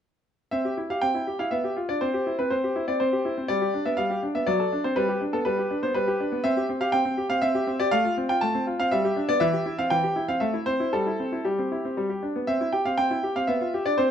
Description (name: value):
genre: classical-period piano sonatina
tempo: 121 BPM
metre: 3/4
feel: straight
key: C major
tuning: A4 = 440 Hz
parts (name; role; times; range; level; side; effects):
- bright grand piano; solo; 0.5-14.1 s; E3 to A5; -23 LUFS; equal; none
room: moderate recital hall reverb, RT60 1.7 s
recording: close, detailed microphones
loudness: -23 LUFS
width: side -8 dB against mid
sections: 0.5-12.5 A section; 12.5-14.1 A section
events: none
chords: 0.5 C; 1.5 G7/B; 2.0 C; 3.5 G; 4.5 D7/F#; 5.0 G; 6.4 C5; 7.9 F/A; 8.9 G; 9.4 C/E; 10.4 Am; 10.9 C/G; 12.0 G; 12.5 C; 13.5 G7/B